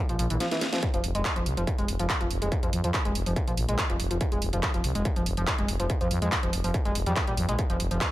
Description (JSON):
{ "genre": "driving peak-time techno", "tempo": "142 BPM", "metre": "4/4", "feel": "straight", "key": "F minor", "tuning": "A4 = 437 Hz", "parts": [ { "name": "overdriven synth lead", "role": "riff", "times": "0.1-8.0 s", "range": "E3 to Ab3", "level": "-31 LUFS", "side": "equal", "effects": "sidechain pumping, ping-pong delay" }, { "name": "growling FM bass", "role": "bass", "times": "0.1-8.0 s", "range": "F1 to F2", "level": "-29 LUFS", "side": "equal", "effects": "sidechain pumping" }, { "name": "techno drum kit", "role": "drums", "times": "0.1-8.1 s", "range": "handclaps, hi-hat, snare drum", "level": "-31 LUFS", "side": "right 1 dB", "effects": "overdrive, sidechain pumping on hats" }, { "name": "electronic kick drum", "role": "drums", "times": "0.8-8.1 s", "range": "none", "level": "-29 LUFS", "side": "equal", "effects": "distortion, overdrive" } ], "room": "light reverb", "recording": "none", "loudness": "-24 LUFS", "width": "side -16 dB against mid", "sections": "0.0-8.1 A section", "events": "drum fill 0.4-0.8", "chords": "0.0 F5", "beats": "0.41 | 0.83 1.25 1.67 2.10 | 2.52 2.94 3.36 3.79 | 4.21 4.63 5.05 5.48 | 5.90 6.32 6.74 7.17 | 7.59 8.01" }